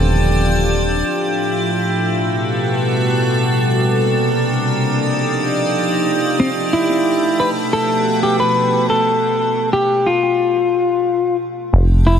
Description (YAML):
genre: IDM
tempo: free time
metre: none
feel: none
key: unclear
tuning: A4 = 443 Hz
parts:
  - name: icy glass pad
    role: sustained chords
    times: 0.0-12.2 s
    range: B2 to A4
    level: -17 LUFS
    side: equal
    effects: chorus, built-in reverb
  - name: deep acid bass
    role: bass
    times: 0.0-1.0, 11.7-12.2 s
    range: Eb1 to F1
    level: -14 LUFS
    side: equal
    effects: none
  - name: clean electric guitar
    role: melody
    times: 6.4-12.2 s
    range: C4 to B4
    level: -16 LUFS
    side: left 2 dB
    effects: analog delay
room: moderate echo chamber reverb, RT60 1.7 s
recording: echo-heavy mix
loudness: -14 LUFS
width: side -8 dB against mid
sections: 0.0-1.1 A section; 1.1-11.7 B section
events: none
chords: 0.0 Ebmaj9; 1.1 Fmaj9; 2.1 Gmaj9; 3.7 Bbmaj9; 4.7 Ebmaj9; 6.4 Fmaj9; 7.4 Gmaj9; 9.1 N.C.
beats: free time